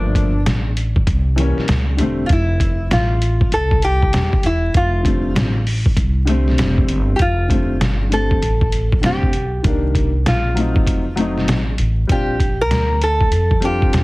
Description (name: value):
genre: hip hop, jazz-hop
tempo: 98 BPM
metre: 4/4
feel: swing 64% on 16ths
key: F major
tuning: A4 = 440 Hz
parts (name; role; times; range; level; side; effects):
- metal-body resonator slide guitar; melody; 0.0-14.0 s; D4 to Bb4; -21 LUFS; equal; none
- warm baby grand piano; accompaniment; 0.0-14.0 s; D3 to F4; -21 LUFS; left 1 dB; none
- upright bass; bass; 0.0-14.0 s; E1 to F2; -19 LUFS; equal; none
- trip hop sampler-style drum kit; drums; 0.2-14.0 s; hi-hat, kick drum, snare drum; -18 LUFS; equal; none
room: little or no reverb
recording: heavily compressed radio sound, multiband compression, vinyl crackle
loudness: -14 LUFS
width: side -22 dB against mid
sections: 0.0-7.2 A section; 7.2-14.0 A section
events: none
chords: 0.0 Gm9; 1.1 C7b9; 2.3 F69; 9.6 Cm7; 10.9 F7b9; 12.1 Bb69